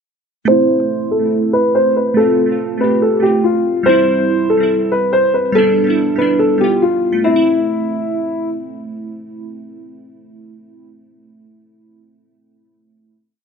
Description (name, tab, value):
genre	hip hop, trap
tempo	142 BPM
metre	4/4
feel	half-time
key	A minor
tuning	A4 = 439 Hz
part	dark grand piano	melody	0.5-8.5 s	E4 to C5	-14 LUFS	left 1 dB	low-pass filter, ping-pong delay
part	glassy digital keys	accompaniment	0.5-13.1 s	G3 to G4	-17 LUFS	right 2 dB	chorus, low-pass filter
room	wet booth ambience, RT60 0.3 s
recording	none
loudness	-12 LUFS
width	side -6 dB against mid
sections	0.5-7.2 breakdown; 7.2-10.6 final chord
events	filter sweep 0.5-7.2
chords	0.5 Am; 2.2 F; 3.9 C; 5.6 G; 7.2 Am